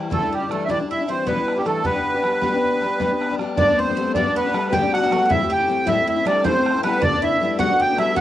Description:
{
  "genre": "celtic folk, Celtic slip jig",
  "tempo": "104 BPM (dotted quarters)",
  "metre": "9/8",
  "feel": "straight",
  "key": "G major",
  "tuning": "A4 = 440 Hz",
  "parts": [
    { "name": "picked steel-string acoustic guitar", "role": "accompaniment", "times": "0.0-8.2 s", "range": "G2 to G4", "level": "-24 LUFS", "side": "left 5 dB", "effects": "cassette tape" },
    { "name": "accordion", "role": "melody", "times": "0.1-8.2 s", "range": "G4 to G5", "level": "-20 LUFS", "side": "right 2 dB", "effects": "light tremolo tuning, cassette tape" },
    { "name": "Irish bouzouki", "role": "second line", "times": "0.1-8.2 s", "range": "G3 to G4", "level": "-33 LUFS", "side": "right 7 dB", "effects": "cassette tape, tape echo" },
    { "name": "clear French horn", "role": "second line", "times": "0.1-8.2 s", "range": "G3 to G4", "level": "-28 LUFS", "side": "left 4 dB", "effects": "cassette tape" },
    { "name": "bodhran", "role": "percussion", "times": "0.1-8.2 s", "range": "none", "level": "-29 LUFS", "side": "right 4 dB", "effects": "none" }
  ],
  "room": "moderate small room reverb, RT60 0.6 s",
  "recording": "home recording on cassette, lossy compression artefacts",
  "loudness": "-18 LUFS",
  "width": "side -12 dB against mid",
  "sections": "0.0-3.6 A section; 3.6-8.2 B section",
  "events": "none",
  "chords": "0.1 G6/B; 1.8 G; 3.6 Gadd9; 5.3 Am7; 7.0 Gadd9/B"
}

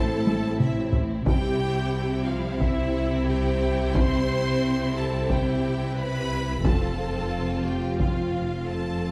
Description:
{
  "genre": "cinematic, epic orchestral film score",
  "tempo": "90 BPM",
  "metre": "4/4",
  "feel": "straight",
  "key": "C major",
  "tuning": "A4 = 440 Hz",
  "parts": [
    { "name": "rich symphonic violin section", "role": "melody", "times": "0.0-9.1 s", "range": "E5 to C6", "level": "-37 LUFS", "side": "equal", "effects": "none" },
    { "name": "warm symphonic violin section", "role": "second line", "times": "0.0-9.1 s", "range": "C4 to F4", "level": "-36 LUFS", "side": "equal", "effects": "none" },
    { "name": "warm symphonic viola section", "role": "accompaniment", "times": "0.0-9.1 s", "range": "F3 to C5", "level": "-35 LUFS", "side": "equal", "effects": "none" },
    { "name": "dark French horn section", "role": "sustained chords", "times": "0.0-9.1 s", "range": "C4 to G4", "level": "-34 LUFS", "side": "equal", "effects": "none" },
    { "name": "warm studio cello section", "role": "bass", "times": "0.0-9.1 s", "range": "F2 to C3", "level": "-33 LUFS", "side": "equal", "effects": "none" },
    { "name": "warm symphonic double bass section", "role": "bass", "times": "0.0-9.1 s", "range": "F1 to C2", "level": "-31 LUFS", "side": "equal", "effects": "none" },
    { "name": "solo taiko drums", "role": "drums", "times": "0.3-8.6 s", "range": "none", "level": "-28 LUFS", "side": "equal", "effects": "none" }
  ],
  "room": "moderate scoring stage reverb, RT60 1.8 s",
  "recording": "none",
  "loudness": "-25 LUFS",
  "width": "mono",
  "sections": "0.0-9.1 A section",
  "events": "drum fill 0.3-1.3",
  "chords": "0.0 Am; 1.3 C; 6.6 F"
}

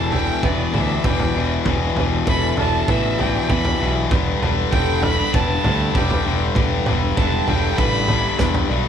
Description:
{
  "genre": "post-rock",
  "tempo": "98 BPM",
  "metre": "4/4",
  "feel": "straight",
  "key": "E minor",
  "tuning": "A4 = 440 Hz",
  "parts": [
    { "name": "rich violin", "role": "melody", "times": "0.0-8.7 s", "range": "D5 to B5", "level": "-25 LUFS", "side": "right 3 dB", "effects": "none" },
    { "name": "pedal harmonium", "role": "sustained chords", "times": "0.0-8.9 s", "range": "D3 to G4", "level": "-32 LUFS", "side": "right 4 dB", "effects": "none" },
    { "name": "electric guitar through a small old amp", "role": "arpeggios", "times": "0.0-8.9 s", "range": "A4 to D5", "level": "-30 LUFS", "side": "right 2 dB", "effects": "none" },
    { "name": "twelve-string electric guitar", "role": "arpeggios", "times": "0.0-8.9 s", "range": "E3 to B4", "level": "-32 LUFS", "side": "right 1 dB", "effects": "none" },
    { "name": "distorted electric guitar", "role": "riff", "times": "0.0-8.9 s", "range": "E2 to G3", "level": "-22 LUFS", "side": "left 5 dB", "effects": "overdrive" },
    { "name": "picked electric bass", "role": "bass", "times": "0.0-8.9 s", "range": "E1 to E2", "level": "-23 LUFS", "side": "right 1 dB", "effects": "none" },
    { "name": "loose indie drum kit", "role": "drums", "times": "0.1-8.7 s", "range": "kick drum, snare drum, toms", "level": "-22 LUFS", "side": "right 1 dB", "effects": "none" }
  ],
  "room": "moderate large studio reverb, RT60 1.2 s",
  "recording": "band playing live in one room",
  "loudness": "-16 LUFS",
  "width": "side -8 dB against mid",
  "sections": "0.0-8.9 A section",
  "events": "build-up 0.0-8.9",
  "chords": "0.0 Em7"
}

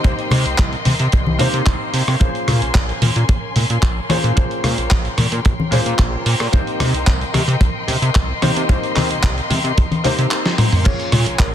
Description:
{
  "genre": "nu-disco, nu disco",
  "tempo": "111 BPM",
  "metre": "4/4",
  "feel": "straight",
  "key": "unclear",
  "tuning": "A4 = 439 Hz",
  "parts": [
    { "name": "bright grand piano", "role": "accompaniment", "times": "0.0-11.5 s", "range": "Bb3 to Db5", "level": "-24 LUFS", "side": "left 1 dB", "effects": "vintage 12-bit sampler grit, sidechain pumping, digital delay" },
    { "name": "muted studio string section", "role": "sustained chords", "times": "0.0-11.5 s", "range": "Db4 to C6", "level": "-25 LUFS", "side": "left 3 dB", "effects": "sidechain pumping" },
    { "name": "chorused synth bass", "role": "bass", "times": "0.0-11.5 s", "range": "Bb1 to C3", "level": "-20 LUFS", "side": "equal", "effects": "sidechain pumping" },
    { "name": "dusty soul sampler-style drum kit", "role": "drums", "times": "0.0-11.5 s", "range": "crash cymbal, handclaps, hi-hat, rim click, snare drum, toms", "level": "-22 LUFS", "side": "right 1 dB", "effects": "none" },
    { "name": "kick drum", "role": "drums", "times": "0.0-11.5 s", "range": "none", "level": "-17 LUFS", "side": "equal", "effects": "soft clipping on snare" },
    { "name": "congas", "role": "percussion", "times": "0.3-11.2 s", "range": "none", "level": "-21 LUFS", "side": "left 2 dB", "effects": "none" },
    { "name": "vibraphone with soft mallets", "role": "melody", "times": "10.9-11.5 s", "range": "Bb4 to Db5", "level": "-29 LUFS", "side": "equal", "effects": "none" }
  ],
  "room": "small room ambience",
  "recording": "dense, heavily limited modern master",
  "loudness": "-14 LUFS",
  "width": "side -10 dB against mid",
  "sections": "0.0-11.5 A section",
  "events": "drum fill 10.4-10.9",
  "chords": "0.0 Cm7; 2.2 Bbm9; 6.5 Cm7; 10.9 Bbm9"
}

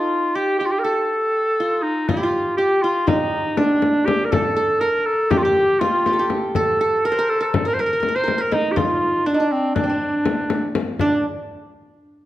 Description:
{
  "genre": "Turkish makam ensemble",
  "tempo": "242 BPM (eighths)",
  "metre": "9/8",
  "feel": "straight",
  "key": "D makam kurdi",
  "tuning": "A4 = 440 Hz",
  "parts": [
    { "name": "bright clarinet", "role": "melody", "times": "0.0-11.2 s", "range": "C4 to C5", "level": "-19 LUFS", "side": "equal", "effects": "none" },
    { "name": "qanun", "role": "second line", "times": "0.0-11.2 s", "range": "C4 to C5", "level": "-23 LUFS", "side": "right 2 dB", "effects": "none" },
    { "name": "frame drum", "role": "percussion", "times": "2.1-11.2 s", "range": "none", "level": "-23 LUFS", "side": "left 4 dB", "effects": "none" }
  ],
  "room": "wet recital hall reverb, RT60 1.6 s",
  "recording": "none",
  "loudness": "-17 LUFS",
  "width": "side -14 dB against mid",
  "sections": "0.0-11.0 A section; 11.0-12.3 B section",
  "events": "none",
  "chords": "none"
}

